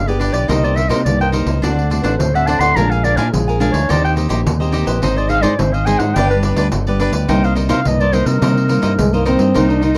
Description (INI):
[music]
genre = samba and choro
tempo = 106 BPM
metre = 4/4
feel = straight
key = C minor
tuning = A4 = 440 Hz
[part]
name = growling clarinet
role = second line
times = 0.0-10.0 s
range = Eb4 to C6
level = -22 LUFS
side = equal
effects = none
[part]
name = nylon-string guitar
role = accompaniment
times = 0.0-10.0 s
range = G2 to G4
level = -23 LUFS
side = equal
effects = none
[part]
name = fingered electric bass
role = bass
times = 0.0-10.0 s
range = G1 to C3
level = -20 LUFS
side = equal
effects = none
[part]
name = cavaquinho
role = accompaniment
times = 0.1-10.0 s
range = D4 to Ab5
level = -23 LUFS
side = equal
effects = none
[part]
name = pandeiro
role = percussion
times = 0.1-10.0 s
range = none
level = -25 LUFS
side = equal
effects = none
[part]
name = mellow trombone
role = melody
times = 9.0-10.0 s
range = Ab3 to Eb4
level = -18 LUFS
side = equal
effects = none
[sound]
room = little or no reverb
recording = dry, close 1970s-style studio recording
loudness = -15 LUFS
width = mono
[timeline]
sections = 0.0-9.6 A section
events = clarinet solo 0.0-9.6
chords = 0.0 G; 0.5 Cm7; 1.6 D7; 2.8 Bb7; 3.9 Eb6; 5.0 Ab; 6.2 G; 7.3 Cm7